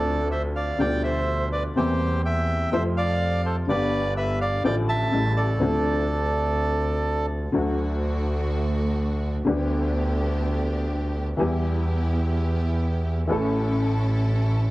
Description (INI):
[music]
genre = tango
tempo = 125 BPM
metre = 4/4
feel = rubato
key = D minor, D major from 7.5 s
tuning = A4 = 440 Hz
[part]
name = bandoneon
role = melody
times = 0.0-7.3 s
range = G4 to A5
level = -26 LUFS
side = right 1 dB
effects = none
[part]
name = clear upright piano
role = accompaniment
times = 0.0-14.7 s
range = G1 to A4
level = -27 LUFS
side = left 2 dB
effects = none
[part]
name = clear double bass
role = bass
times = 0.0-14.7 s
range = G1 to F2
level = -25 LUFS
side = equal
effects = none
[part]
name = clear studio string section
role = stabs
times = 7.5-14.7 s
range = A3 to A4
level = -32 LUFS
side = right 2 dB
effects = analog delay
[sound]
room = moderate spring reverb, RT60 1.5 s, small room ambience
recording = worn, warbling old tape, cassette tape, warbly pitch drift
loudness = -22 LUFS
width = side -18 dB against mid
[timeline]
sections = 0.0-7.5 A section; 7.5-14.7 B section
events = none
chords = 0.0 Dm7; 0.8 G7/D; 1.8 C7/E; 2.7 F; 3.7 G; 4.6 Dm/A; 5.1 A7; 5.6 Dm7; 7.5 D; 9.5 G/D; 11.4 Em; 13.3 A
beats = 0.32 0.80 1.28 | 1.77 2.25 2.73 3.21 | 3.69 4.17 4.65 5.12 | 5.61 6.09 6.57 7.05 | 7.54 8.02 8.50 8.98 | 9.47 9.95 10.43 10.90 | 11.38 11.86 12.34 12.81 | 13.29 13.77 14.26